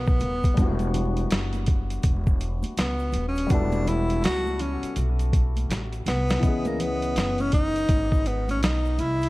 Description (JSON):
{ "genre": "hip hop, jazz-hop", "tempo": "82 BPM", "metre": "4/4", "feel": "swing 63% on 16ths", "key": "unclear", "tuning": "A4 = 440 Hz", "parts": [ { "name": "breathy tenor saxophone", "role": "melody", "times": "0.0-9.3 s", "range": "A#3 to F#4", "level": "-28 LUFS", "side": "equal", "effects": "analog delay" }, { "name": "dark concert grand piano", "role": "accompaniment", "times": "0.0-9.3 s", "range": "E3 to D#5", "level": "-32 LUFS", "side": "left 3 dB", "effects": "none" }, { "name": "upright bass", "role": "bass", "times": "0.0-9.3 s", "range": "D#1 to C#2", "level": "-27 LUFS", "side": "equal", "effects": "none" }, { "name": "boom bap sampler-style drum kit", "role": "drums", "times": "0.1-9.3 s", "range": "hi-hat, kick drum, snare drum", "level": "-24 LUFS", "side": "equal", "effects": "none" }, { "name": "egg shaker and congas", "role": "percussion", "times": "0.1-9.3 s", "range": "none", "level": "-38 LUFS", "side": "right 3 dB", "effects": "none" } ], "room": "small room ambience", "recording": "dark, warm production, vinyl crackle", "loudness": "-22 LUFS", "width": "side -19 dB against mid", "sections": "0.0-9.3 A section", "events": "tenor saxophone solo 0.0-9.3; drum fill 5.7-6.4", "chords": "0.0 G#m9; 0.6 Em9; 6.4 C#m9" }